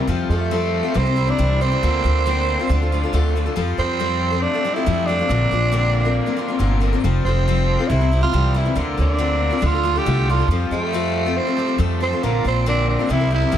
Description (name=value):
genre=folk rock and heartland rock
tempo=138 BPM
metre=4/4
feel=straight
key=F major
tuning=A4 = 440 Hz
part: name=picked steel-string acoustic guitar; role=accompaniment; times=0.0-13.6 s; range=Bb2 to C5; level=-24 LUFS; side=left 6 dB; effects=none
part: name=raw garage guitar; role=riff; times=0.0-13.6 s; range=Bb2 to G4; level=-27 LUFS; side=equal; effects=overdrive
part: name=upright bass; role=bass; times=0.1-13.6 s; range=F1 to F2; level=-20 LUFS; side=equal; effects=none
part: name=raspy tenor saxophone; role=melody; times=0.3-13.6 s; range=A3 to G4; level=-22 LUFS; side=right 3 dB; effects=analog delay
room=light reverb, small room reverb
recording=none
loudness=-17 LUFS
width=side -10 dB against mid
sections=0.1-13.6 A section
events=none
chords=0.1 Fadd9; 0.9 C; 1.8 Bbadd9/D; 2.7 Dm; 3.6 Fadd9; 5.3 Bbadd9; 7.0 Fadd9; 7.9 C; 8.8 Bbadd9/D; 9.6 Dm; 10.5 Fadd9; 12.2 Bbadd9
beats=| 0.08 0.51 0.95 1.38 | 1.82 2.25 2.69 3.12 | 3.56 3.99 4.43 4.86 | 5.30 5.73 6.16 6.60 | 7.03 7.46 7.90 8.33 | 8.77 9.20 9.63 10.06 | 10.50 10.93 11.36 11.80 | 12.23 12.66 13.09 13.53